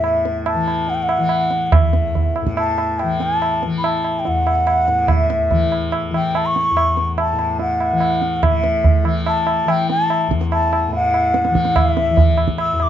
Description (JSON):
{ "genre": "indian classical, Hindustani", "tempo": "144 BPM", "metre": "4/4", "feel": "straight", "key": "unclear", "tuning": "A4 = 440 Hz", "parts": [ { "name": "bansuri", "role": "melody", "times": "0.0-12.9 s", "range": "E5 to E6", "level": "-18 LUFS", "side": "left 1 dB", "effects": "plate reverb" }, { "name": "tanpura", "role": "drone", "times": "0.0-12.9 s", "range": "E2 to E3", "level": "-22 LUFS", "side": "left 3 dB", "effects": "none" }, { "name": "tabla", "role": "percussion", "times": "0.0-12.9 s", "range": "none", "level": "-19 LUFS", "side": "right 3 dB", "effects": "none" } ], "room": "moderate small room reverb, RT60 0.6 s", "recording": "dark, warm production, nothing above 7.6 kHz", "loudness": "-15 LUFS", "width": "side -10 dB against mid", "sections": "0.0-8.4 A section; 8.4-12.9 B section", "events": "none", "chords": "none", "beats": "| 0.05 0.47 0.89 1.31 | 1.74 2.16 2.58 3.00 | 3.42 3.84 4.25 4.67 | 5.09 5.51 5.93 6.35 | 6.77 7.19 7.60 8.02 | 8.44 8.86 9.27 9.69 | 10.10 10.52 10.94 11.35 | 11.77 12.18 12.60" }